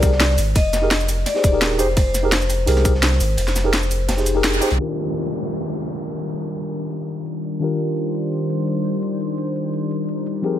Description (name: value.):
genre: liquid drum and bass.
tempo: 170 BPM.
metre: 4/4.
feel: swing 54% on 16ths.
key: Eb major.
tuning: A4 = 440 Hz.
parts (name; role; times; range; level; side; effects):
vibraphone with medium hard mallets; melody; 0.0-4.4 s; C5 to Eb5; -24 LUFS; left 3 dB; dub echo.
mellow tine electric piano; accompaniment; 0.0-10.6 s; Eb3 to C5; -24 LUFS; equal; slow stereo tremolo, digital delay.
warm sub bass; bass; 0.0-4.8 s; Eb1 to C2; -20 LUFS; equal; none.
crunchy breakbeat drum kit; drums; 0.0-4.8 s; hi-hat, snare drum; -30 LUFS; equal; high-pass filter on hats, high-pass filter on snare, high-pass filter on room.
drum and bass drum kit; drums; 0.0-10.5 s; hi-hat, ride cymbal, shaker, snare drum; -22 LUFS; equal; overdrive.
electronic kick drum; drums; 0.0-2.9 s; none; -17 LUFS; equal; overdrive.
lush unison pad; sustained chords; 4.8-10.6 s; Eb3 to G5; -24 LUFS; left 2 dB; chorus, sidechain pumping.
downlifter; sound effects; 4.8-7.6 s; none; -30 LUFS; left 1 dB; none.
room: light reverb, digital ambience.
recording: low-pass filter.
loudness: -18 LUFS.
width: side -11 dB against mid.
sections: 0.0-4.8 A section; 4.8-10.6 B section.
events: drop 0.0-4.8; kick drops out 3.4-4.8; band accent 4.4; filter sweep on analog synth pad 4.8-10.6; filter sweep 4.8-10.6.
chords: 0.0 Fm11; 4.8 Ebmaj7.